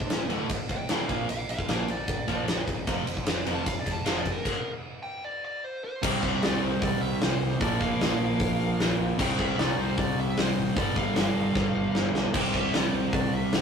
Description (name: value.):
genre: hard rock.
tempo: 152 BPM.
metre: 4/4.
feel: straight.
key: unclear.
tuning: A4 = 440 Hz.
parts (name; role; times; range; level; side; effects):
dark smooth lead guitar; melody; 0.0-13.6 s; D4 to A5; -35 LUFS; equal; overdrive.
growling picked electric bass; bass; 0.0-13.6 s; D1 to C2; -37 LUFS; equal; overdrive.
big rock drum kit; drums; 0.0-13.6 s; crash cymbal, hi-hat, kick drum, ride cymbal, snare drum, splash cymbal; -28 LUFS; equal; none.
cranked stack guitar; riff; 0.3-13.6 s; D2 to C4; -30 LUFS; left 3 dB; overdrive.
crunchy overdriven guitar; riff; 0.3-13.6 s; D2 to C4; -32 LUFS; right 6 dB; spring reverb.
room: moderate studio reverb, RT60 0.5 s.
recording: rough rehearsal-room recording, tube saturation.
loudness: -24 LUFS.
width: side -6 dB against mid.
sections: 0.0-6.0 A section; 6.0-13.6 B section.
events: lead electric guitar solo 0.0-6.0; stop 4.5-6.0; drum fill 11.6-12.3.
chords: 0.0 D5; 1.1 Bb; 2.9 F5; 4.5 N.C.; 6.0 C5; 7.6 Bb5; 9.2 C5; 10.8 G5; 12.3 C5.